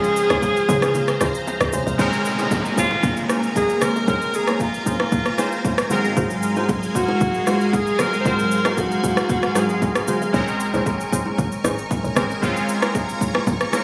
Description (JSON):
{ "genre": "amapiano", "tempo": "115 BPM", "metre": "4/4", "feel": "straight", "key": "Bb minor", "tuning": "A4 = 436 Hz", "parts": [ { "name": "breathy alto saxophone", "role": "melody", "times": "0.0-10.1 s", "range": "F4 to C5", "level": "-26 LUFS", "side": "equal", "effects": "tape echo" }, { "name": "warm analog keys", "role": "accompaniment", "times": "0.0-13.8 s", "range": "Ab2 to F5", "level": "-27 LUFS", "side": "equal", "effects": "chorus" }, { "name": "string machine, violins", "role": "sustained chords", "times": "0.0-13.8 s", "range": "Ab3 to Db6", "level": "-28 LUFS", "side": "equal", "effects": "phaser, ensemble chorus, sidechain pumping" }, { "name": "woody log drum bass", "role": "bass", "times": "0.0-2.0, 10.3-12.4 s", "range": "Ab1 to Db3", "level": "-29 LUFS", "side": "equal", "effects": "none" }, { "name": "deep house drum kit", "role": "drums", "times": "0.0-13.8 s", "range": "kick drum, rim click, shaker", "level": "-26 LUFS", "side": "equal", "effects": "none" }, { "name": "percussive organ stab", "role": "stabs", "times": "0.3-12.3 s", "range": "Ab3 to C5", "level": "-31 LUFS", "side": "equal", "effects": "chorus, tape echo" }, { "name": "bongos and congas", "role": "percussion", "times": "0.3-13.8 s", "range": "none", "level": "-32 LUFS", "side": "equal", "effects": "none" }, { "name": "downlifter", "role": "sound effects", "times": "2.0-6.2 s", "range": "none", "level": "-34 LUFS", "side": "equal", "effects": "none" } ], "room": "light reverb", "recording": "recorded on a phone in the room, studio reverb, compression", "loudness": "-21 LUFS", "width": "mono", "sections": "0.0-2.0 A section; 2.0-13.8 B section", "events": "drop 0.0-2.0; break 0.9-2.0", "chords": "0.0 Dbmaj7; 2.0 Bbm9; 5.9 Ab13; 10.3 Bbm9" }